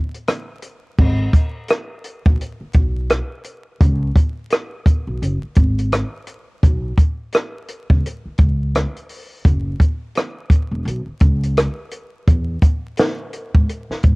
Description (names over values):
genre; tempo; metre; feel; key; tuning
hip hop, jazz-hop; 85 BPM; 4/4; swing 59% on 16ths; G# minor; A4 = 440 Hz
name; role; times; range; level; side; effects
compact cocktail drum kit; drums; 0.1-14.2 s; crash cymbal, hi-hat, kick drum, rim click, snare drum; -15 LUFS; equal; cassette tape
upright bass; bass; 1.0-14.2 s; E1 to G#2; -21 LUFS; equal; none
room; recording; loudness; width
little or no reverb; home recording on cassette, vinyl crackle; -16 LUFS; side -29 dB against mid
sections
1.0-14.2 A section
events
none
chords
none